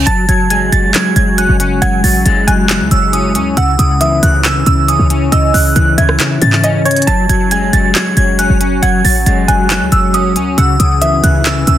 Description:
hip hop, trap; 137 BPM; 4/4; half-time; A4 = 440 Hz
electric guitar at the edge of break-up; accompaniment; 0.0-11.8 s; C#3 to C#4; -16 LUFS; left 4 dB; analog chorus
short 808-style bass; bass; 0.0-11.8 s; F#1 to G#2; -14 LUFS; equal
glassy synth bell; melody; 0.1-11.8 s; D#6 to A6; -15 LUFS; right 2 dB; chorus, phaser
soft round pluck; second line; 0.1-11.8 s; C#5 to A5; -20 LUFS; right 2 dB; chorus, digital delay
warbly tape-like pad; sustained chords; 0.1-11.8 s; C#3 to C#5; -21 LUFS; right 1 dB; chorus, built-in reverb
trap drum kit; drums; 0.1-11.8 s; handclaps, hi-hat, rim click; -16 LUFS; equal
digital ambience; dense, heavily limited modern master; -9 LUFS; side -12 dB against mid
0.1-11.8 A section
0.1 F#madd9; 3.6 C#madd9; 7.1 F#madd9; 10.6 C#madd9
| 0.07 0.51 0.94 1.38 | 1.82 2.26 2.69 3.13 | 3.57 4.01 4.45 4.88 | 5.32 5.76 6.20 6.64 | 7.07 7.51 7.95 8.39 | 8.83 9.26 9.70 10.14 | 10.58 11.02 11.45

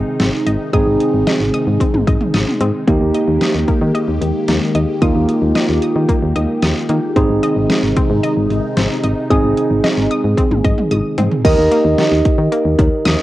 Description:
synth-pop; 112 BPM; 4/4; straight; Eb major; A4 = 440 Hz
tine electric piano; accompaniment; 0.0-13.2 s; Bb3 to Eb5; -16 LUFS; right 2 dB; analog chorus
phased analog pad; sustained chords; 0.0-11.4 s; C3 to G4; -23 LUFS; left 2 dB; phaser, chorus
solid FM bass; bass; 0.0-13.2 s; Ab1 to Eb3; -18 LUFS; equal
wide unison pluck; arpeggios; 0.2-13.2 s; Eb3 to Eb6; -25 LUFS; left 2 dB; tape echo
pop drum kit; drums; 0.2-13.2 s; cowbell, crash cymbal, hi-hat, kick drum, snare drum, toms; -18 LUFS; equal; cassette tape
moderate spring reverb, RT60 1.4 s; home recording on cassette; -13 LUFS; side -15 dB against mid
0.0-11.4 A section; 11.4-13.2 B section
drum fill 10.9-11.4
0.0 Ab; 2.9 Eb; 7.2 Ab; 11.4 Eb
0.20 | 0.73 1.27 1.80 2.34 | 2.88 3.41 3.95 4.48 | 5.02 5.55 6.09 6.63 | 7.16 7.70 8.23 8.77 | 9.30 9.84 10.38 10.91 | 11.45 11.98 12.52 13.05

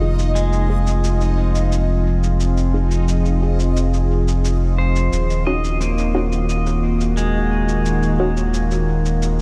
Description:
ambient dub; 88 BPM; 4/4; straight; A4 = 440 Hz
warm analog pad; sustained chords; 0.0-9.4 s; Eb3 to Ab4; -25 LUFS; equal; chorus, vintage 12-bit sampler grit
filtered dub chord stab; stabs; 0.0-8.4 s; Db4 to Ab4; -30 LUFS; equal; chorus, dub echo
soft dub sub bass; bass; 0.0-9.4 s; Eb1 to F1; -21 LUFS; equal
backwards swelling texture; texture; 0.0-9.4 s; Eb4 to Eb5; -34 LUFS; equal; built-in reverb
cabasa; drums; 0.2-9.4 s; -38 LUFS; equal; studio reverb, dub echo
pedal steel guitar; arpeggios; 0.4-9.3 s; Ab3 to Eb5; -28 LUFS; equal; analog delay
light reverb; -19 LUFS; mono
0.0-9.4 A section
filter sweep on synth stab 0.0-9.4
0.0 Fm7; 5.1 Ebm7
0.35 1.03 1.72 | 2.40 3.08 3.76 4.44 | 5.13 5.81 6.49 7.17 | 7.85 8.54 9.22

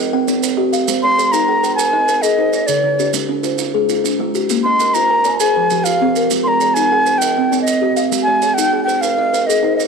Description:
southern african traditional, mbira-style interlocking cycle; 132 BPM (dotted quarters); 12/8; straight; A4 = 441 Hz
kalimba; arpeggios; 0.0-9.9 s; Db3+43c to Ab5+29c; -20 LUFS; left 11 dB
kalimba; arpeggios; 0.0-9.9 s; Db3+43c to Ab5+29c; -20 LUFS; right 12 dB
maracas; percussion; 0.3-9.9 s; -24 LUFS; right 13 dB
wooden flute; melody; 1.0-9.8 s; Db5+43c to C6; -15 LUFS; equal
moderate echo chamber reverb, RT60 2.5 s; 1960s-style stereo with parts hard left and right; -13 LUFS; side -5 dB against mid
0.0-9.9 A section
0.0 Cm; 0.9 Ab; 2.7 Db; 4.5 Bbm; 5.4 Fm; 6.3 Ab; 7.2 Cm; 8.1 Ab
0.43 | 0.88 1.33 1.79 2.24 | 2.69 3.14 3.59 4.05 | 4.50 4.95 5.41 5.86 | 6.31 6.76 7.22 7.67 | 8.12 8.58 9.03 9.49

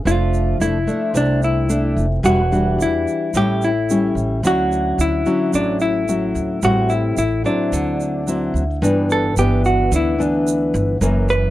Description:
bossa nova; 110 BPM; 4/4; straight; D major; A4 = 440 Hz
nylon-string guitar; accompaniment; 0.0-11.5 s; F#2 to F#4; -19 LUFS; left 1 dB
upright bass; bass; 0.0-11.5 s; E1 to E2; -21 LUFS; right 1 dB
hollow-body jazz guitar; melody; 0.1-11.5 s; D4 to B4; -20 LUFS; equal
egg shaker; percussion; 0.1-11.5 s; -33 LUFS; right 11 dB
little or no reverb; dry, close 1970s-style studio recording; -16 LUFS; side -14 dB against mid
0.0-8.8 A section; 8.8-11.5 B section
hollow-body jazz guitar solo 8.8-11.5
0.1 F6; 2.2 Em9; 3.3 A7; 4.4 Dmaj9; 6.6 Am7; 7.7 D9; 8.8 G6
| 0.05 0.60 1.15 1.70 | 2.25 2.79 3.34 3.89 | 4.44 4.99 5.54 6.08 | 6.63 7.18 7.73 8.27 | 8.82 9.37 9.92 10.46 | 11.01

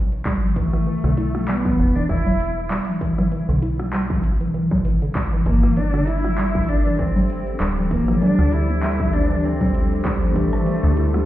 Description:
IDM; 98 BPM; 4/4; swing 56% on 16ths; A4 = 441 Hz
metallic FM bass; bass; 0.0-11.3 s; D1 to D2; -22 LUFS; equal
booming analog drum machine; drums; 0.1-11.2 s; congas, handclaps, hi-hat, rim click, shaker; -26 LUFS; equal; digital delay
deep acid bass; arpeggios; 0.3-11.2 s; D3 to E4; -24 LUFS; right 1 dB; tape echo
electronic kick drum; drums; 0.3-10.5 s; -23 LUFS; equal; distortion
rich cello; melody; 0.6-11.3 s; A3 to E4; -25 LUFS; left 1 dB; ping-pong delay
hollow soft pad; sustained chords; 5.5-11.3 s; F3 to C5; -26 LUFS; equal; chorus
moderate echo chamber reverb, RT60 2.2 s; heard muffled through a wall, stone room reverb, EQ; -18 LUFS; side -14 dB against mid
0.0-11.3 A section
0.0 Em; 5.5 G9sus4
| 0.56 1.18 1.79 2.40 | 3.01 3.62 4.24 4.85 | 5.46 6.07 6.68 7.30 | 7.91 8.52 9.13 9.75 | 10.36 10.97

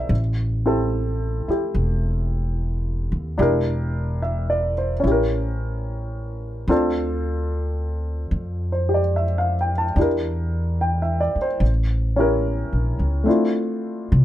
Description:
jazz ballad; 73 BPM; 4/4; swing 67% on 8ths; D minor; A4 = 445 Hz
warm baby grand piano; accompaniment; 0.0-14.2 s; A3 to A5; -23 LUFS; equal
upright bass; bass; 0.0-14.2 s; E1 to C3; -22 LUFS; equal
little or no reverb; close, detailed microphones; -20 LUFS; side -12 dB against mid
0.0-13.3 A section
0.1 Am7; 3.4 Em7b5; 5.0 A7b9; 6.7 Dm7; 10.0 Em7b5; 11.6 A7b9; 13.3 Dm9
| 0.10 0.92 1.75 2.57 | 3.39 4.21 5.03 5.85 | 6.67 7.50 8.32 9.14 | 9.96 10.79 11.61 12.44 | 13.26 14.09

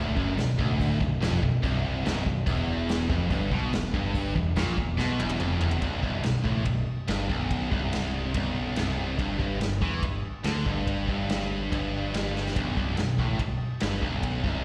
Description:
heavy metal; 143 BPM; 4/4; straight; A4 = 440 Hz
distorted electric guitar; riff; 0.0-5.8 s; B1 to B2; -38 LUFS; equal
high-gain distorted guitar; riff; 0.0-14.6 s; B1 to E3; -32 LUFS; equal; distortion, slapback echo
scooped high-gain guitar; riff; 0.0-14.6 s; B1 to E3; -38 LUFS; equal; distortion
growling picked electric bass; bass; 0.0-14.6 s; B0 to E2; -33 LUFS; equal; overdrive
vintage brush drum kit; drums; 0.2-14.5 s; crash cymbal, kick drum, ride cymbal, snare drum, toms; -33 LUFS; equal
light reverb; live gig heard through the venue's PA, recital hall reverb; -28 LUFS; mono
0.0-5.8 A section; 5.8-14.6 B section
drum fill 5.0-5.8, 12.3
0.0 Bm; 2.5 E5; 5.8 Am9/B; 9.2 G5; 12.6 Am9/B
0.36 | 0.79 1.21 1.62 2.04 | 2.46 2.88 3.30 3.72 | 4.14 4.56 4.98 5.40 | 5.82 6.25 6.67 7.09 | 7.51 7.93 8.35 8.77 | 9.19 9.61 10.03 10.45 | 10.87 11.29 11.71 12.13 | 12.55 12.97 13.39 13.81 | 14.23

